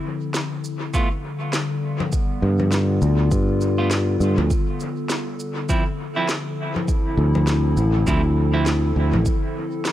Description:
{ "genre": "ambient dub", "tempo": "101 BPM", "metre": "4/4", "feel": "swing 59% on 16ths", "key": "D dorian", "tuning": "A4 = 438 Hz", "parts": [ { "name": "warbly tape-like pad", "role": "sustained chords", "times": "0.0-9.9 s", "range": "D3 to A4", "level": "-25 LUFS", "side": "left 1 dB", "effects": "chorus, built-in reverb" }, { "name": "electronic snare drum, shaker and congas", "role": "drums", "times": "0.3-9.9 s", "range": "none", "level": "-28 LUFS", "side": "left 1 dB", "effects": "studio reverb, dub echo" }, { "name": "clean electric guitar", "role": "stabs", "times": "0.9-8.6 s", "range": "F3 to F4", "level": "-28 LUFS", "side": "right 3 dB", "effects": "dub echo" }, { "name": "electronic kick drum", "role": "drums", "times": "0.9-9.4 s", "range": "none", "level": "-22 LUFS", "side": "equal", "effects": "studio reverb" }, { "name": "fingered electric bass", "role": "bass", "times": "2.4-9.2 s", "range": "A1 to G2", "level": "-18 LUFS", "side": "equal", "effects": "none" } ], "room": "light reverb, digital ambience", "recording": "echo-heavy mix", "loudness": "-19 LUFS", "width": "side -13 dB against mid", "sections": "0.0-9.9 A section", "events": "none", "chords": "0.0 Dm9; 0.9 G9; 5.7 Dm9" }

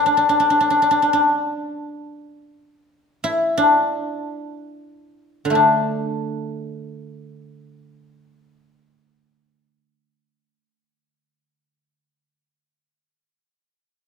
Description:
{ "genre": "chinese traditional, Chinese solo plucked strings", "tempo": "free time", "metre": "none", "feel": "none", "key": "unclear", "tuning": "A4 = 440 Hz", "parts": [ { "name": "guzheng", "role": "solo", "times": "0.0-12.1 s", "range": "D3 to D5", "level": "-17 LUFS", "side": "left 2 dB", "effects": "none" } ], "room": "moderate scoring stage reverb, RT60 1.5 s", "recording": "minimal, uncompressed stereo recording", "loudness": "-17 LUFS", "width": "side -5 dB against mid", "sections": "0.0-5.6 A section; 5.6-10.5 B section", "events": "slowing down 0.0-5.6", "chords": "none" }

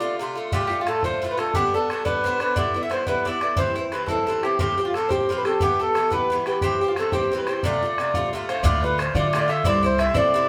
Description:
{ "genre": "celtic folk, Celtic jig", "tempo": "118 BPM (dotted quarters)", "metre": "6/8", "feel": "straight", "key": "D dorian", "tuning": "A4 = 442 Hz", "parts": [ { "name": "mellow accordion", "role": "melody", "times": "0.0-10.5 s", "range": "F4 to E5", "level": "-26 LUFS", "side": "equal", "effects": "none" }, { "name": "mandolin", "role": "second line", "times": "0.0-10.5 s", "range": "F4 to F5", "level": "-34 LUFS", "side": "equal", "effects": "none" }, { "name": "wooden flute", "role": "second line", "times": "0.0-10.5 s", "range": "F4 to E5", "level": "-34 LUFS", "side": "equal", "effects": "none" }, { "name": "Irish bouzouki", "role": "accompaniment", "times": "0.0-10.5 s", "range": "G2 to G4", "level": "-28 LUFS", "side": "equal", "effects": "none" }, { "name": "bodhran", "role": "percussion", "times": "0.5-10.2 s", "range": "none", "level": "-31 LUFS", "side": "equal", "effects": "none" }, { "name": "upright bass", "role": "bass", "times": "8.6-10.5 s", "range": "C2 to D3", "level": "-27 LUFS", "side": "equal", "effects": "none" } ], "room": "moderate studio reverb, RT60 0.7 s", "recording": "band playing live in one room", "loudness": "-23 LUFS", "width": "mono", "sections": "0.5-8.6 A section; 8.6-10.5 B section", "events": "none", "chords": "0.0 Dm7; 0.5 Dm; 1.5 G; 2.6 Em7/G; 3.6 C; 4.6 Fadd9; 5.6 Em; 6.6 C; 7.6 Dm7; 8.6 Dm; 9.6 Cadd9" }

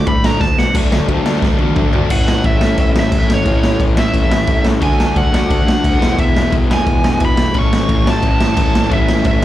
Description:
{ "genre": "punk rock", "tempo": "176 BPM", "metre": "4/4", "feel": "straight", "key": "unclear", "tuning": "A4 = 440 Hz", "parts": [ { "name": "high-gain lead guitar", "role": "melody", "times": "0.0-9.4 s", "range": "C#5 to C#6", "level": "-20 LUFS", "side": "right 1 dB", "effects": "distortion, slapback echo" }, { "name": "overdriven electric guitar", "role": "riff", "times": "0.0-9.4 s", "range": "A2 to F#4", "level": "-19 LUFS", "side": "left 7 dB", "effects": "none" }, { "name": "sludgy distorted guitar", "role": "riff", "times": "0.0-2.1, 7.5-9.4 s", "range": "A2 to D4", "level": "-23 LUFS", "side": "right 12 dB", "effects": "overdrive, slapback echo" }, { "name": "fuzz picked electric bass", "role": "bass", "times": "0.0-9.4 s", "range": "E1 to B2", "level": "-20 LUFS", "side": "right 1 dB", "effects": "overdrive" }, { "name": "raw garage drum kit", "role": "drums", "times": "0.1-9.4 s", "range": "crash cymbal, kick drum, ride cymbal, snare drum, toms", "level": "-15 LUFS", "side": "equal", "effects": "none" } ], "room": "little or no reverb", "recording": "live gig heard through the venue's PA, club reverb", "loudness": "-12 LUFS", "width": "side -13 dB against mid", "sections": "0.7-2.1 A section; 2.1-9.4 B section", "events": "drum fill 0.4-0.7, 1.4-2.1", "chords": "0.0 D5; 0.7 D; 2.1 A; 4.8 D; 6.0 E; 7.5 A" }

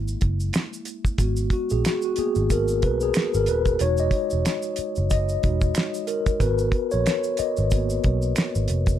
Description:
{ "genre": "R&B, neo-soul", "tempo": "92 BPM", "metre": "4/4", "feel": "swing 57% on 16ths", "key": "G# minor", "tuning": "A4 = 438 Hz", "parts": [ { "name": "mellow tine electric piano", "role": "accompaniment", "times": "0.0-9.0 s", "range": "G#3 to D#5", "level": "-24 LUFS", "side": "left 1 dB", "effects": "medium stereo tremolo, plate reverb" }, { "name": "vintage muted picked electric bass", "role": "bass", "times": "0.0-9.0 s", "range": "D#1 to B1", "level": "-24 LUFS", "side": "equal", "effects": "none" }, { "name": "tube shaker and finger snaps", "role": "percussion", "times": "0.1-9.0 s", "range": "none", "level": "-36 LUFS", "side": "right 4 dB", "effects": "none" }, { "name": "cloth-damped thuddy drum kit", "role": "drums", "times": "0.2-9.0 s", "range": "hi-hat, kick drum, snare drum", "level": "-24 LUFS", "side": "equal", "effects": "none" } ], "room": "moderate studio reverb, RT60 0.6 s", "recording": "none", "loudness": "-21 LUFS", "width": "side -11 dB against mid", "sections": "0.0-9.0 A section", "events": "tine electric piano solo 0.0-9.0", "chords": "0.0 F#7; 1.2 G#m9; 3.8 Emaj9; 6.4 G#m9" }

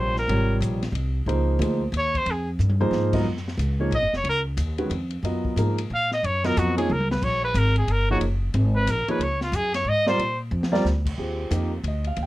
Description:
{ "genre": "modal jazz", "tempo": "182 BPM", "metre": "3/4", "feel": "swing 62% on 8ths", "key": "F# major from 3.3 s", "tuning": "A4 = 438 Hz", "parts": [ { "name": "clear trumpet", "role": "melody", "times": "0.0-10.4 s", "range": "E#4 to E#5", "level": "-24 LUFS", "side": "equal", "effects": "none" }, { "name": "dark baby grand piano", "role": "accompaniment", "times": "0.0-12.3 s", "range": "Ab2 to G5", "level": "-25 LUFS", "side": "right 1 dB", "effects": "none" }, { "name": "upright bass", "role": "bass", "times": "0.0-12.3 s", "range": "E#1 to A#2", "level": "-24 LUFS", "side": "equal", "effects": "none" }, { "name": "open jazz drum kit", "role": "drums", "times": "0.2-12.3 s", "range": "crash cymbal, hi-hat, kick drum, ride cymbal, snare drum, toms", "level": "-34 LUFS", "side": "left 2 dB", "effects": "none" } ], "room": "little or no reverb", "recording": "close, detailed microphones", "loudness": "-21 LUFS", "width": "side -17 dB against mid", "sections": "0.0-3.3 A section; 3.3-11.2 A section; 11.2-12.3 A section", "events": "trumpet solo 0.0-11.2; drum fill 2.6-2.9, 6.9-7.2, 10.5-10.9", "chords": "0.0 Dbmaj9; 3.3 F#maj9; 10.2 A#; 11.2 Ebmaj9" }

